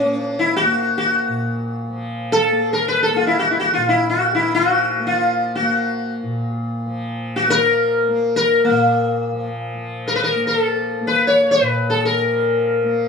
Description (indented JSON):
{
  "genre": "indian classical, Hindustani",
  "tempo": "free time",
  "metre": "none",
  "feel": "none",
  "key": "Bb raga todi",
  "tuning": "A4 = 440 Hz",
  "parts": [
    { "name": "sitar", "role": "melody", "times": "0.0-13.0 s", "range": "Bb3 to Db5", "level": "-16 LUFS", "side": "left 2 dB", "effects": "none" },
    { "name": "tanpura", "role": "drone", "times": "0.0-13.1 s", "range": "Bb2 to Bb3", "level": "-25 LUFS", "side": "equal", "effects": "none" }
  ],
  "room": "wet small room reverb, RT60 0.5 s",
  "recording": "band playing live in one room, small room ambience",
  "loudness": "-16 LUFS",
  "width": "side -5 dB against mid",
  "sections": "0.0-9.8 A section; 9.8-13.1 A section",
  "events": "none",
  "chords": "none",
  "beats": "free time"
}